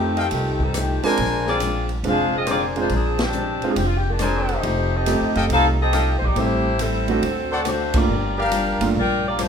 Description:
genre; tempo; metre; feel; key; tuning
jazz, big band swing; 139 BPM; 4/4; swing 67% on 8ths; unclear; A4 = 440 Hz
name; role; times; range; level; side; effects
clear saxophone section; melody; 0.0-9.5 s; Eb3 to G5; -23 LUFS; left 2 dB; none
clear baby grand piano; accompaniment; 0.0-8.9 s; Ab3 to G4; -25 LUFS; right 4 dB; none
hollow-body jazz guitar; accompaniment; 0.0-9.5 s; G2 to G4; -29 LUFS; left 3 dB; none
upright bass; bass; 0.0-9.5 s; F1 to F2; -24 LUFS; equal; none
clear trumpet section; stabs; 0.2-8.9 s; G4 to Ab5; -26 LUFS; left 2 dB; none
swinging big-band drum kit; drums; 0.2-9.5 s; hi-hat, kick drum, ride cymbal, rim click, snare drum; -30 LUFS; equal; none
room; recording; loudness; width
moderate recital hall reverb, RT60 1.4 s; minimal, uncompressed stereo recording; -18 LUFS; side -7 dB against mid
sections
0.0-9.5 A section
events
band accent 3.1, 7.9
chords
0.0 F9; 1.2 Bb9; 4.6 F9; 6.4 Am7; 7.2 D7; 8.1 Gm7

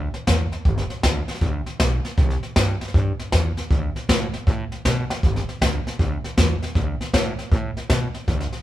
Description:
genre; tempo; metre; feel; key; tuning
rockabilly; 157 BPM; 4/4; swing 65% on 8ths; G major; A4 = 440 Hz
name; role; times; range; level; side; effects
upright bass; bass; 0.0-8.6 s; G1 to B2; -23 LUFS; equal; none
jazz brush drum kit; drums; 0.1-8.6 s; hi-hat, kick drum, snare drum; -22 LUFS; equal; none
room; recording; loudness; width
moderate large studio reverb, RT60 1.5 s; band playing live in one room; -20 LUFS; side -14 dB against mid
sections
0.0-8.6 A section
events
drum fill 5.0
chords
none

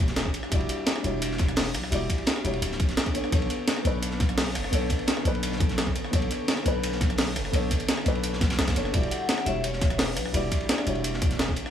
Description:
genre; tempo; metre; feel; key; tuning
liquid drum and bass; 171 BPM; 4/4; straight; E dorian; A4 = 440 Hz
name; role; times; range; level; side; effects
dark baby grand piano; accompaniment; 0.0-11.7 s; G3 to D5; -31 LUFS; left 2 dB; dub echo
glassy FM pad; sustained chords; 0.0-11.7 s; D3 to C#5; -36 LUFS; right 1 dB; ensemble chorus, built-in reverb, sidechain pumping
long sustained 808-style bass; bass; 0.0-11.6 s; D1 to B1; -29 LUFS; equal; none
breakbeat sampler-style drum kit; drums; 0.1-11.7 s; hi-hat, rim click, snare drum; -29 LUFS; equal; none
crunchy breakbeat drum kit; drums; 0.1-11.7 s; hi-hat, ride cymbal, snare drum; -34 LUFS; equal; high-pass filter on hats, high-pass filter on cymbals, high-pass filter on snare, high-pass filter on room
electronic kick drum; drums; 0.3-11.6 s; none; -27 LUFS; equal; none
vibraphone with medium mallets; melody; 8.9-10.8 s; B4 to F#5; -33 LUFS; left 1 dB; dub echo
room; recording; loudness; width
small room ambience; none; -24 LUFS; side -9 dB against mid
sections
0.0-11.7 A section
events
none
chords
0.0 Em9; 3.1 Bm9; 8.9 Em9

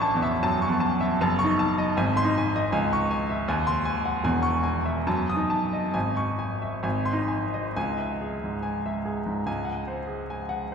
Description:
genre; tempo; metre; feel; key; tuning
classical, romantic character piece for solo piano; 65-81 BPM; 2/4; rubato; C# minor; A4 = 440 Hz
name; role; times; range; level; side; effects
clear baby grand piano; solo; 0.0-10.7 s; E1 to D#6; -23 LUFS; equal; none
room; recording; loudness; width
wet cathedral reverb, RT60 4.0 s; recorded in a church or concert hall; -23 LUFS; side -6 dB against mid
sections
0.0-7.8 A section; 7.8-10.7 B section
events
none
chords
0.0 A; 1.2 D#m7b5/F#; 1.9 G#; 2.7 C#m; 3.5 G#7/D#; 4.2 C#m/E; 5.1 D#dim/F#; 5.9 C#m/G#; 6.8 G#; 7.8 C#m; 9.5 G#7/C#

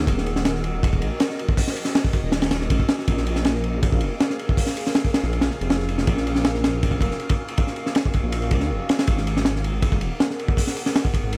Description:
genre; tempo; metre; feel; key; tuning
drum and bass, jungle; 160 BPM; 4/4; straight; G# dorian; A4 = 440 Hz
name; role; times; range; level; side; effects
granular cloud pad; sustained chords; 0.0-11.4 s; B3 to F#5; -33 LUFS; equal; built-in reverb
dark detuned saw bass; bass; 0.0-11.4 s; D#1 to D#2; -27 LUFS; equal; none
crunchy breakbeat drum kit; drums; 0.1-11.4 s; hi-hat, kick drum, ride cymbal, snare drum; -24 LUFS; equal; none
room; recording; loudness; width
small room ambience; none; -22 LUFS; mono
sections
0.0-9.1 A section; 9.1-11.4 A section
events
drop 0.0-9.1, 9.1-11.4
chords
0.1 D#m7; 3.1 A#m7; 6.1 F#maj7; 9.1 G#m9

